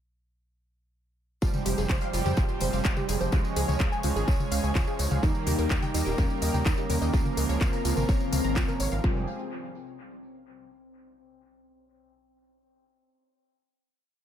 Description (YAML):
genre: melodic techno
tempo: 126 BPM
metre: 4/4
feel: straight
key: F minor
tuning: A4 = 440 Hz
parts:
  - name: lush unison pad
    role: sustained chords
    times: 1.4-9.3 s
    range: Db3 to Db5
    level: -36 LUFS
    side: left 1 dB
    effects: chorus, sidechain pumping
  - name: wide unison pluck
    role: arpeggios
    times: 1.4-9.3 s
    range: Eb4 to Bb5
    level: -35 LUFS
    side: right 1 dB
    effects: sidechain pumping, tape echo
  - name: analog synth brass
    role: stabs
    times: 1.4-9.2 s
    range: Ab2 to Bb3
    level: -34 LUFS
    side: right 6 dB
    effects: chorus, sidechain pumping, analog delay
  - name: gritty driven synth bass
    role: bass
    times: 1.4-9.3 s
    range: Eb1 to F2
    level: -30 LUFS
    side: equal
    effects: sidechain pumping
  - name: electronic kick drum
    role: drums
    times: 1.4-9.1 s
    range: none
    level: -26 LUFS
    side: equal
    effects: none
  - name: tambourine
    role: percussion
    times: 1.4-9.0 s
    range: none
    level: -40 LUFS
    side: left 4 dB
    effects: analog delay
  - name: house drum kit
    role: drums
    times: 1.5-8.9 s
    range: handclaps, hi-hat, toms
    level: -34 LUFS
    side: left 1 dB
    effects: analog delay
  - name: soft octave-layered synth lead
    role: melody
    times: 5.2-9.2 s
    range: C4 to Eb4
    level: -35 LUFS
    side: left 4 dB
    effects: chorus, phaser, sidechain pumping, dub echo
room: light reverb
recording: echo-heavy mix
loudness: -24 LUFS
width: side -10 dB against mid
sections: 1.4-9.0 drop; 9.0-10.9 final chord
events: drop 1.4-9.0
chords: 1.4 Fmadd9; 3.3 Db; 5.2 Eb; 7.1 Bbm; 9.0 Fmadd9